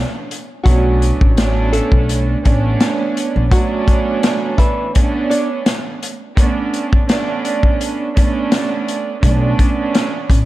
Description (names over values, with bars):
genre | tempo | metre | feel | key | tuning
hip hop, boom-bap hip-hop | 84 BPM | 4/4 | swing 55% on 16ths | B minor | A4 = 438 Hz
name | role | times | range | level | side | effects
warm studio string section | accompaniment | 0.0-10.5 s | A3 to D4 | -19 LUFS | right 4 dB | cassette tape, high-pass filter, low-pass filter
upright bass | bass | 0.0-3.5, 9.2-10.5 s | A1 to B1 | -16 LUFS | equal | none
vintage drum kit | drums | 0.3-10.5 s | hi-hat, kick drum, snare drum | -15 LUFS | equal | none
nylon-string guitar | melody | 0.6-5.5 s | E3 to D5 | -22 LUFS | equal | high-pass filter, low-pass filter, slapback echo
room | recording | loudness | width
studio reverb | dark, warm production | -13 LUFS | side -16 dB against mid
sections
0.0-10.5 A section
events
none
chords
0.0 Bm9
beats
| 0.66 1.37 2.08 2.80 | 3.51 4.23 4.94 5.66 | 6.37 7.08 7.80 8.51 | 9.23 9.94